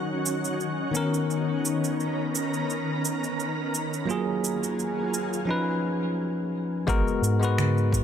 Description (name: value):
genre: sunset chillout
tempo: 86 BPM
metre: 4/4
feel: swing 54% on 16ths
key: unclear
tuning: A4 = 440 Hz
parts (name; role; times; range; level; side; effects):
- bell-like tine electric piano; accompaniment; 0.0-8.0 s; D#3 to B4; -28 LUFS; moving between left 6 dB and right 4 dB; auto-pan, vintage 12-bit sampler grit, digital delay
- shimmering ambient pad; sustained chords; 0.0-5.5 s; D#3 to A#4; -29 LUFS; equal; chorus, built-in reverb
- electronic cabasa, finger snaps and congas; drums; 0.3-8.0 s; none; -31 LUFS; right 3 dB; overdrive
- round analog bass; bass; 6.9-8.0 s; G#1 to G#2; -23 LUFS; equal; none
- electronic kick drum; drums; 6.9-8.0 s; none; -28 LUFS; equal; overdrive
room: light reverb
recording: none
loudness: -24 LUFS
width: side -9 dB against mid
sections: 0.0-6.9 A section; 6.9-8.0 B section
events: none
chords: 0.0 D#m7; 0.9 Bmaj9/D#; 4.1 F#maj9; 5.5 C#9; 6.9 G#m9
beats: 0.60 | 1.30 1.99 2.69 3.39 | 4.09 4.79 5.48 6.18 | 6.88 7.58